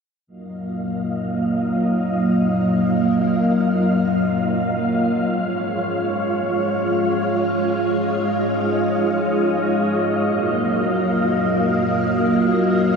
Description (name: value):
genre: ambient, sequencer-driven space music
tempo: free time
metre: none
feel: none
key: Eb minor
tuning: A4 = 440 Hz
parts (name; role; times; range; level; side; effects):
- string machine, full ensemble; sustained chords; 0.3-13.0 s; Gb3 to F5; -18 LUFS; equal; ensemble chorus
- wind-like tuned noise texture; texture; 0.7-13.0 s; F4 to F5; -26 LUFS; right 1 dB; built-in reverb
room: wet huge ambient reverb, RT60 8.7 s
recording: in a vast, echoing space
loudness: -17 LUFS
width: side -5 dB against mid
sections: 0.3-13.0 A section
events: filter sweep on string machine 0.3-13.0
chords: 0.3 Ebmadd9; 5.3 Db; 10.3 Ebmadd9